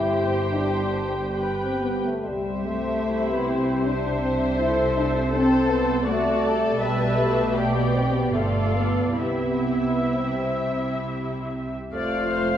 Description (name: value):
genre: classical, slow romantic movement for symphony orchestra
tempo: 64-82 BPM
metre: 3/4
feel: rubato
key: C major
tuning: A4 = 440 Hz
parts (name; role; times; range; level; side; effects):
- muted studio violin section; melody; 0.0-12.6 s; E5 to A5; -33 LUFS; left 3 dB; none
- muted symphonic violin section; second line; 0.0-12.6 s; E4 to D5; -30 LUFS; left 2 dB; none
- muted studio viola section; accompaniment; 0.0-12.6 s; A3 to E5; -28 LUFS; equal; none
- mellow French horn section; sustained chords; 0.0-12.6 s; G3 to F4; -25 LUFS; left 1 dB; none
- muted studio cello section; bass; 0.0-12.6 s; F2 to C3; -29 LUFS; right 2 dB; none
- muted studio double bass section; bass; 0.0-12.6 s; F1 to C2; -31 LUFS; right 2 dB; none
- mellow hollow silver concert flute; second line; 11.9-12.6 s; F6; -28 LUFS; left 5 dB; none
- warm clarinet; second line; 11.9-12.6 s; C5; -31 LUFS; right 2 dB; none
- warm bassoon; accompaniment; 11.9-12.6 s; A3; -32 LUFS; equal; none
room: wet recital hall reverb, RT60 1.7 s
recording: heard from further back in the room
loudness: -21 LUFS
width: side -10 dB against mid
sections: 0.0-11.9 A section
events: none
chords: 0.0 Gsus4; 1.4 G; 2.2 C; 4.6 D7/C; 6.8 G/B; 8.3 G; 9.2 C; 11.9 F